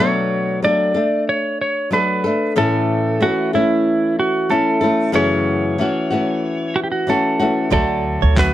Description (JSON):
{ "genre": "acoustic pop", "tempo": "93 BPM", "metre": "4/4", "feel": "swing 55% on 16ths", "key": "unclear", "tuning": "A4 = 444 Hz", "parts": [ { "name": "clean lap steel guitar", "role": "melody", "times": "0.0-8.5 s", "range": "E4 to D5", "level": "-19 LUFS", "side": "right 2 dB", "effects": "none" }, { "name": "flamenco guitar", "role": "accompaniment", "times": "0.0-8.5 s", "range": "F#2 to A4", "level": "-18 LUFS", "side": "left 2 dB", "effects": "none" }, { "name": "direct-recorded clean electric guitar", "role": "arpeggios", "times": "7.7-8.4 s", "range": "C#5 to D5", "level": "-24 LUFS", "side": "right 13 dB", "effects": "none" }, { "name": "upright bass", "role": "bass", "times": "7.7-8.5 s", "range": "D2", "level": "-18 LUFS", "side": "right 1 dB", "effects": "none" }, { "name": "dusty soul sampler-style drum kit", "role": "drums", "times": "7.7-8.5 s", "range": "handclaps, kick drum", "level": "-19 LUFS", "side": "right 1 dB", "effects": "none" } ], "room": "moderate studio ambience, RT60 0.5 s", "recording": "none", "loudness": "-15 LUFS", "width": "side -13 dB against mid", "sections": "0.0-8.5 A section", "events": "none", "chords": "0.0 Bm7; 2.6 A; 5.1 F#m7; 7.7 Dmaj7", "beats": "0.62 1.27 1.92 | 2.56 3.21 3.85 4.50 | 5.14 5.79 6.44 7.08 | 7.73 8.38" }